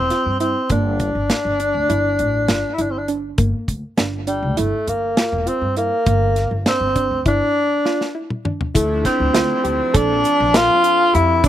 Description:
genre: progressive instrumental, band music in an uneven meter.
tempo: 201 BPM (eighths).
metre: 9/8.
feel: straight.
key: G dorian.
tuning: A4 = 436 Hz.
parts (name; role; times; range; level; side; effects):
mellow tenor saxophone; melody; 0.0-11.5 s; G3 to F4; -18 LUFS; equal; slapback echo.
upright bass; bass; 0.0-11.5 s; E1 to G2; -23 LUFS; equal; none.
soft round pluck; arpeggios; 0.1-11.5 s; Bb3 to Bb4; -26 LUFS; right 3 dB; chorus, slapback echo.
deep reggae drum kit; drums; 0.1-11.5 s; hi-hat, kick drum, snare drum, toms; -20 LUFS; equal; none.
phased analog pad; accompaniment; 8.8-11.5 s; E3 to A4; -26 LUFS; equal; phaser, chorus, slapback echo.
tube shaker; percussion; 8.8-11.5 s; none; -36 LUFS; left 7 dB; none.
room: little or no reverb.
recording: recorded outdoors, with no room sound.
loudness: -16 LUFS.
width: side -12 dB against mid.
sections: 0.0-8.8 A section; 8.8-11.5 B section.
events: break 7.4-8.8; drum fill 7.9-8.8.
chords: 0.0 F5; 0.7 Bb6/G; 1.9 G7sus2; 3.4 Gm; 4.6 Gm13; 6.1 Bb6/G; 7.3 Dmadd9; 9.9 Bbmaj7.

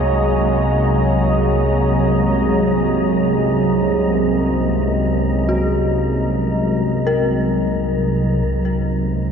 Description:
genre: dark ambient drone.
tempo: free time.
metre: none.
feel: none.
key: unclear.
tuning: A4 = 440 Hz.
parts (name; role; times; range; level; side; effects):
deep dark ambient pad; sustained chords; 0.0-9.3 s; F#3 to Eb5; -18 LUFS; right 1 dB; chorus, built-in reverb.
dark detuned synth bell; arpeggios; 0.0-9.3 s; Eb4 to Bb4; -26 LUFS; left 5 dB; chorus, ping-pong delay.
analog drone; drone; 0.0-9.3 s; C2 to C3; -20 LUFS; equal; chorus.
wind-like tuned noise texture; texture; 0.0-8.5 s; Bb3 to Bb5; -27 LUFS; equal; built-in reverb.
room: wet cathedral reverb, RT60 6.3 s.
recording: none.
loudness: -15 LUFS.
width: side -7 dB against mid.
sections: 0.0-8.4 A section.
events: filter sweep on synth drone 0.0-8.4.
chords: 0.0 Ab5; 8.4 Cm.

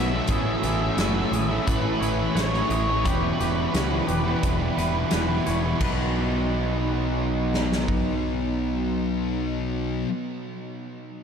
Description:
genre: rock, shoegaze and dream pop.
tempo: 87 BPM.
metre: 4/4.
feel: straight.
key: B mixolydian.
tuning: A4 = 440 Hz.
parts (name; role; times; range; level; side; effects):
octave-fuzz lead guitar; melody; 0.0-5.1 s; B4 to E5; -31 LUFS; equal; distortion, ping-pong delay.
twangy electric guitar; arpeggios; 0.0-6.7 s; F#4 to E5; -36 LUFS; left 3 dB; analog chorus, ping-pong delay.
overdriven electric guitar; riff; 0.0-10.1 s; E2 to F#4; -28 LUFS; right 7 dB; reverse reverb.
thick fuzz guitar; riff; 0.0-10.1 s; E2 to B3; -28 LUFS; left 7 dB; distortion, analog chorus.
growling picked electric bass; bass; 0.0-10.0 s; E1 to C#2; -28 LUFS; equal; overdrive.
big rock drum kit; drums; 0.3-8.0 s; crash cymbal, hi-hat, kick drum, snare drum; -29 LUFS; equal; none.
room: wet huge ambient reverb, RT60 8.2 s.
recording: dreamy mix soaked in reverb.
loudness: -22 LUFS.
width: side -7 dB against mid.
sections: 0.0-5.8 A section; 5.8-8.6 B section.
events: none.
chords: 0.3 Amaj7; 3.0 Em; 5.8 B.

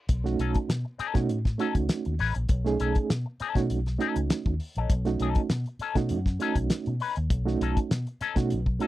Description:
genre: funk.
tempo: 100 BPM.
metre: 4/4.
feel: straight.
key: unclear.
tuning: A4 = 440 Hz.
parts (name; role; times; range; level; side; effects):
vintage muted fingered electric bass; bass; 0.1-8.8 s; A1 to B2; -29 LUFS; left 1 dB; none.
cloth-damped thuddy drum kit; drums; 0.1-8.9 s; hi-hat, kick drum, snare drum; -27 LUFS; left 1 dB; none.
reed electric piano; stabs; 0.2-8.9 s; A3 to G#4; -29 LUFS; right 6 dB; fast tremolo.
electric guitar with an envelope filter; accompaniment; 0.4-8.9 s; C#4 to B4; -31 LUFS; left 8 dB; wah.
room: little or no reverb.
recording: dry, close 1970s-style studio recording.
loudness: -25 LUFS.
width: side -15 dB against mid.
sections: 0.1-8.9 A section.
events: none.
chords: 0.1 B9.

